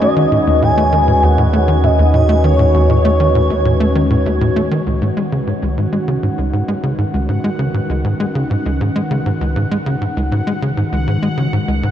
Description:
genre	ambient, sequencer-driven space music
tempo	99 BPM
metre	4/4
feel	straight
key	unclear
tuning	A4 = 440 Hz
part	expressive synth lead	melody	0.0-4.2 s	C#5 to G#5	-18 LUFS	equal	ensemble chorus, tape echo
part	sweeping resonant pad	sustained chords	0.0-11.9 s	D#3 to B4	-20 LUFS	left 1 dB	chorus, phaser
part	tight sequencer bass	riff	0.0-11.9 s	C#2 to A3	-17 LUFS	equal	wide subtle chorus, tape echo
part	warm sub bass	bass	0.0-4.8 s	D#2	-16 LUFS	equal	none
part	bubbling stepped-filter texture	texture	0.0-11.9 s	F#5 to G#6	-31 LUFS	left 2 dB	chorus, built-in reverb
room	wet huge ambient reverb, RT60 8.3 s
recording	in a vast, echoing space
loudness	-13 LUFS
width	side -10 dB against mid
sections	0.0-4.9 A section; 4.9-11.9 B section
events	none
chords	0.0 D#m7b5; 4.9 C#5

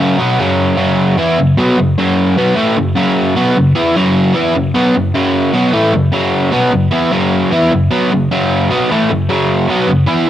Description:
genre	rock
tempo	152 BPM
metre	4/4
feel	straight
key	unclear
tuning	A4 = 442 Hz
part	crunchy overdriven guitar	solo	0.0-10.3 s	F#2 to E4	-11 LUFS	equal	none
room	light reverb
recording	home recording on cassette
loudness	-11 LUFS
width	side -11 dB against mid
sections	0.8-10.3 A section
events	none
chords	0.0 F#5

